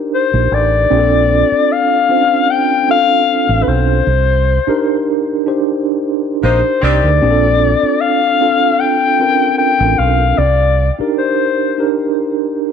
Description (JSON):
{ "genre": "R&B, neo-soul", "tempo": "76 BPM", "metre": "4/4", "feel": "swing 54% on 16ths", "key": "Bb major", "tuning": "A4 = 440 Hz", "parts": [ { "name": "mellow tine electric piano", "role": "accompaniment", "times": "0.0-12.7 s", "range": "C4 to C5", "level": "-16 LUFS", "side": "right 4 dB", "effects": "medium stereo tremolo" }, { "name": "mellow clarinet", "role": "melody", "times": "0.1-11.9 s", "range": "Cb5 to G5", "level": "-14 LUFS", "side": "left 6 dB", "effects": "slapback echo" }, { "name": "deep dub fingered electric bass", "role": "bass", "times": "0.3-11.0 s", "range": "A1 to D2", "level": "-14 LUFS", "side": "right 2 dB", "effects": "none" }, { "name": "warm horn section", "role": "stabs", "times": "6.4-7.1 s", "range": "C3 to G4", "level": "-22 LUFS", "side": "right 2 dB", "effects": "none" } ], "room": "light reverb, small room ambience", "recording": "none", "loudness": "-11 LUFS", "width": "side -7 dB against mid", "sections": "0.0-12.7 A section", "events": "band accent 4.1-7.2", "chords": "0.0 Cm7; 0.9 Bbmaj9; 4.1 Cm7; 7.2 Bbmaj9; 10.4 Cm7", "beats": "0.11 | 0.90 1.69 2.48 3.27 | 4.06 4.85 5.64 6.42 | 7.21 8.00 8.79 9.58 | 10.37 11.16 11.95" }